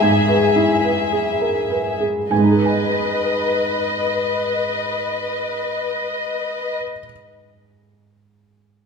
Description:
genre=cinematic, emotional film score for orchestra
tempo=52 BPM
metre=4/4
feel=rubato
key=G# minor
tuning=A4 = 438 Hz
part: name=muted symphonic violin section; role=second line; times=0.0-6.8 s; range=G#4 to E5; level=-20 LUFS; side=left 4 dB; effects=none
part: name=felt-muted upright piano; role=accompaniment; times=0.0-8.9 s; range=G#2 to A#5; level=-19 LUFS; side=right 3 dB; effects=none
room=moderate scoring stage reverb, RT60 1.6 s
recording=close, detailed microphones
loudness=-17 LUFS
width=side -5 dB against mid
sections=0.0-2.3 A section; 2.3-7.0 B section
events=slowing down 0.0-2.3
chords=0.0 E/G#; 2.3 G#m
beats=0.02 1.12 | 2.30 3.47 4.64 5.81

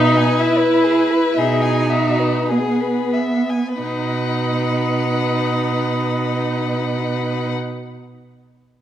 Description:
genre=classical, slow romantic movement for string quartet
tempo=43-67 BPM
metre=4/4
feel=rubato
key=B major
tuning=A4 = 440 Hz
part: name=rich violin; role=melody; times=0.0-7.5 s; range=F#4 to F#5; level=-25 LUFS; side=left 8 dB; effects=none
part: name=dark violin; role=second line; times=0.0-7.5 s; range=G#4 to G#5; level=-24 LUFS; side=left 4 dB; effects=none
part: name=rich viola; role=accompaniment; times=0.0-7.5 s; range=B3 to E4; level=-20 LUFS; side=right 2 dB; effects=none
part: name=clear cello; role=bass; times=0.0-7.5 s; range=B2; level=-22 LUFS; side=right 3 dB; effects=none
room=wet recital hall reverb, RT60 1.7 s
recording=none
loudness=-16 LUFS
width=side -11 dB against mid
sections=0.0-3.8 A section; 3.8-8.8 B section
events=slowing down 0.0-3.8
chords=0.0 E/B; 3.8 B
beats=0.39 1.37 2.48 | 3.80 5.08 6.33

